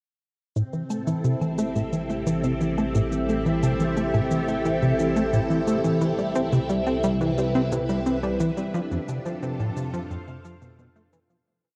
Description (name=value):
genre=ambient, sequencer-driven space music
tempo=88 BPM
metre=4/4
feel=straight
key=A minor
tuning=A4 = 440 Hz
part: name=string machine, full ensemble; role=sustained chords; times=0.6-11.5 s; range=C4 to F5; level=-29 LUFS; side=equal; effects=phaser, ensemble chorus
part: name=plucky analog bass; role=riff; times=0.6-11.4 s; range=F2 to C4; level=-27 LUFS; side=equal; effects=delay
part: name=analog drone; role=bass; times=1.6-11.4 s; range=A1 to F2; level=-37 LUFS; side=equal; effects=chorus
part: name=shaker and woodblock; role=percussion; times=0.6-11.4 s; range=none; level=-47 LUFS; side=equal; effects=delay
room=wet huge ambient reverb, RT60 9.0 s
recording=worn, warbling old tape, cassette tape, warbly pitch drift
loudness=-25 LUFS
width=mono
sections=0.6-11.5 A section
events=fade-out 7.8-11.5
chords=0.6 Am7; 6.0 Cmaj7; 8.7 F6